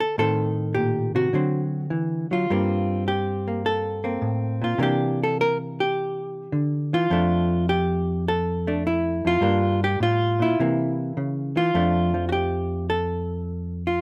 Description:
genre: solo jazz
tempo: 104 BPM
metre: 4/4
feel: swing 69% on 8ths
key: F major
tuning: A4 = 440 Hz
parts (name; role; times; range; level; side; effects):
- hollow-body jazz guitar; solo; 0.0-14.0 s; F2 to Bb4; -24 LUFS; equal; none
room: little or no reverb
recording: close, detailed microphones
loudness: -24 LUFS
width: mono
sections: 0.0-11.7 A section; 11.7-14.0 A section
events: none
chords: 0.2 Adim; 1.3 D7; 2.5 Gm11; 4.8 C9; 7.1 F69; 9.4 Gm7; 10.6 C7b9; 11.7 F69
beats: | 0.18 0.76 1.34 1.91 | 2.49 3.07 3.64 4.22 | 4.80 5.37 5.95 6.53 | 7.11 7.68 8.26 8.84 | 9.41 9.99 10.57 11.15 | 11.72 12.30 12.88 13.46

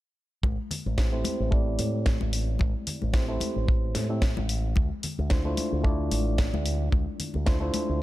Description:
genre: nu-disco, nu disco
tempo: 111 BPM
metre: 4/4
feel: swing 55% on 16ths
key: unclear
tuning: A4 = 436 Hz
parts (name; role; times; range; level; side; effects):
- fingered electric bass with an envelope filter; bass; 0.4-8.0 s; A1 to A2; -28 LUFS; equal; sidechain pumping
- kick drum; drums; 0.4-7.6 s; none; -25 LUFS; equal; none
- congas; percussion; 0.4-7.9 s; none; -36 LUFS; left 5 dB; none
- house drum kit; drums; 0.7-7.9 s; hi-hat, snare drum; -34 LUFS; left 1 dB; none
- reed electric piano; accompaniment; 1.0-8.0 s; A3 to E5; -32 LUFS; equal; vintage 12-bit sampler grit, sidechain pumping, low-pass filter, analog delay
room: little or no reverb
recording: dark, warm production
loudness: -24 LUFS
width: side -16 dB against mid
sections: 0.4-8.0 A section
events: filter sweep on reed electric piano 0.4-8.0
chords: 0.4 Am7; 4.8 Dm9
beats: | 0.44 0.98 1.52 2.06 | 2.60 3.15 3.69 4.23 | 4.77 5.31 5.85 6.39 | 6.93 7.47 8.01

